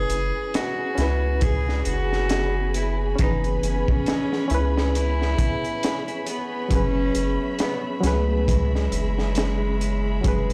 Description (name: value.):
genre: trip hop.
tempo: 68 BPM.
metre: 4/4.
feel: swing 58% on 16ths.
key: unclear.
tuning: A4 = 441 Hz.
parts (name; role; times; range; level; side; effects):
rich cello; melody; 0.0-10.5 s; G#3 to G#4; -30 LUFS; equal; tape echo.
barky reed electric piano; accompaniment; 0.0-10.5 s; E3 to B4; -32 LUFS; equal; overdrive, fast tremolo.
warm studio string section; sustained chords; 0.0-10.5 s; G#4 to B5; -35 LUFS; equal; none.
round analog bass; bass; 0.0-10.5 s; F#1 to C#2; -26 LUFS; equal; none.
backwards swelling texture; texture; 0.6-10.5 s; B3 to B4; -41 LUFS; equal; none.
crunchy breakbeat drum kit; drums; 0.1-10.5 s; hi-hat, kick drum, snare drum; -29 LUFS; equal; none.
room: small room ambience.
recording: played on a big sound system in a bare room, large studio reverb.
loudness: -23 LUFS.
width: mono.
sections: 0.0-10.5 A section.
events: none.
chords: 0.0 C#m7/F#.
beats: 0.54 1.42 2.30 | 3.18 4.07 4.95 5.83 | 6.71 7.60 8.48 9.36 | 10.24.